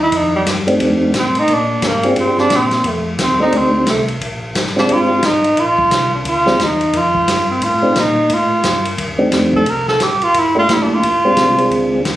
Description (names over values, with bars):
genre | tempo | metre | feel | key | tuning
soul jazz organ trio | 176 BPM | 4/4 | swing 63% on 8ths | F mixolydian | A4 = 435 Hz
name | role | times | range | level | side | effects
breathy tenor saxophone | melody | 0.0-11.8 s | G3 to Bb4 | -14 LUFS | right 1 dB | none
mellow tonewheel organ | bass | 0.0-12.2 s | F1 to Bb2 | -24 LUFS | equal | slow rotary speaker
vintage drum kit | drums | 0.1-12.1 s | hi-hat, kick drum, ride cymbal, snare drum | -20 LUFS | left 2 dB | none
percussive tonewheel organ | melody | 0.7-12.0 s | Ab3 to Ab4 | -15 LUFS | equal | slow rotary speaker, chorus vibrato
room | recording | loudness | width
moderate studio reverb, RT60 0.9 s | recorded on a phone in the room, club reverb | -12 LUFS | side -14 dB against mid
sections
0.0-12.2 A section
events
tenor saxophone solo 0.0-12.2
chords
0.0 F13; 1.5 Bb13; 2.8 F13; 4.2 Bb13; 6.9 F13; 9.7 C13; 11.0 Bb13